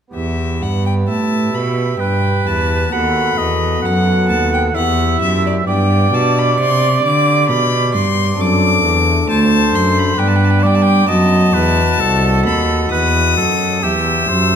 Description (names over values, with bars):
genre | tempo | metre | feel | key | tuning
classical, baroque-style sonata movement with continuo | 66 BPM | 3/4 | straight | E minor | A4 = 440 Hz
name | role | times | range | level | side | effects
rich violin | melody | 0.1-14.6 s | D5 to E6 | -19 LUFS | left 6 dB | none
pipe organ, foundations | accompaniment | 0.1-14.6 s | C2 to E5 | -19 LUFS | left 2 dB | none
rich cello | bass | 0.1-14.6 s | C2 to G3 | -16 LUFS | right 1 dB | none
clear oboe | second line | 1.1-14.6 s | G4 to F#5 | -18 LUFS | right 4 dB | none
room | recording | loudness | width
wet recital hall reverb, RT60 1.4 s | none | -12 LUFS | side -8 dB against mid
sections
0.1-14.6 A section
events
none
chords
0.1 Em; 2.9 B7/D#; 4.8 Em; 5.7 G; 8.4 D7; 10.2 G; 11.1 B7; 13.8 Em